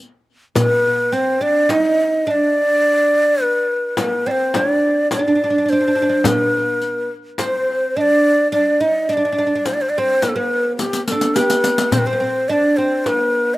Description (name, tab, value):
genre	Arabic maqam ensemble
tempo	106 BPM (eighths)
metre	10/8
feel	straight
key	unclear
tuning	A4 = 441 Hz
part	darbuka	percussion	0.0-13.3 s	none	-25 LUFS	right 1 dB	none
part	breathy ney	melody	0.6-13.6 s	G4 to Eb5+23c	-16 LUFS	equal	slapback echo
part	oud	second line	0.6-13.6 s	Bb3+50c to G4	-21 LUFS	right 2 dB	slapback echo
part	frame drum	percussion	0.6-13.3 s	none	-24 LUFS	left 4 dB	none
part	riq	percussion	0.6-13.3 s	none	-24 LUFS	left 2 dB	none
room	little or no reverb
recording	recorded outdoors, with no room sound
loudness	-15 LUFS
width	side -17 dB against mid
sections	0.0-11.9 A section; 11.9-13.6 B section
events	drum fill 10.8-11.9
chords	none